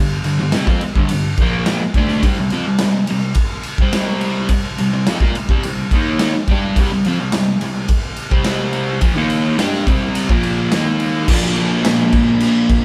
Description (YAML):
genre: garage rock duo or trio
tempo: 106 BPM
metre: 4/4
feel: straight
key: unclear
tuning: A4 = 440 Hz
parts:
  - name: crunchy overdriven guitar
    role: riff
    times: 0.0-12.8 s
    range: G2 to G4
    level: -19 LUFS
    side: equal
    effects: none
  - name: raw garage drum kit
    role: drums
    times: 0.2-12.8 s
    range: crash cymbal, kick drum, ride cymbal, snare drum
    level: -20 LUFS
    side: equal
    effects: none
room: moderate studio reverb, RT60 0.8 s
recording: band playing live in one room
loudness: -17 LUFS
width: mono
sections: 0.0-11.3 A section; 11.3-12.8 B section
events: none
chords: 0.0 G5; 2.2 C5; 10.7 Eb5; 11.3 Bb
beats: 0.54 1.10 1.67 | 2.23 2.80 3.37 3.93 | 4.50 5.07 5.63 6.20 | 6.76 7.33 7.90 8.46 | 9.03 9.59 10.16 10.73 | 11.29 11.86 12.42